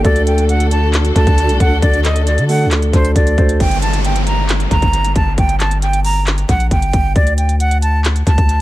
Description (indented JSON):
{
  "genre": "hip hop, trap",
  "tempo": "135 BPM",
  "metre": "4/4",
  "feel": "half-time",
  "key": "G harmonic minor",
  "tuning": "A4 = 440 Hz",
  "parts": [
    { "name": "breathy silver concert flute", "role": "melody", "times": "0.0-8.6 s", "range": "C5 to Bb5", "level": "-19 LUFS", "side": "right 1 dB", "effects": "dub echo" },
    { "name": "dark concert grand piano", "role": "accompaniment", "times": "0.0-3.6 s", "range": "A3 to C5", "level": "-19 LUFS", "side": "right 2 dB", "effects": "dub echo" },
    { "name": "dark symphonic string section", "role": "sustained chords", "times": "0.0-3.6 s", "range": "D3 to A4", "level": "-22 LUFS", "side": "left 2 dB", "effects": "none" },
    { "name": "long sustained 808-style bass", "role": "bass", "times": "0.0-8.6 s", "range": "G1 to D3", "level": "-15 LUFS", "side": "equal", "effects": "none" },
    { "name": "trap drum kit", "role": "drums", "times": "0.0-8.6 s", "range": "handclaps, hi-hat, kick drum", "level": "-17 LUFS", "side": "equal", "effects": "none" },
    { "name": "downlifter", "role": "sound effects", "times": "3.6-7.2 s", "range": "none", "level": "-24 LUFS", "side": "equal", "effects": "none" }
  ],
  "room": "small room ambience",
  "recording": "echo-heavy mix",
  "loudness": "-12 LUFS",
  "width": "side -16 dB against mid",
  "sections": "0.0-3.6 A section; 3.6-8.6 B section",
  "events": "none",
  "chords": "0.0 D; 3.6 Gm; 7.2 D5"
}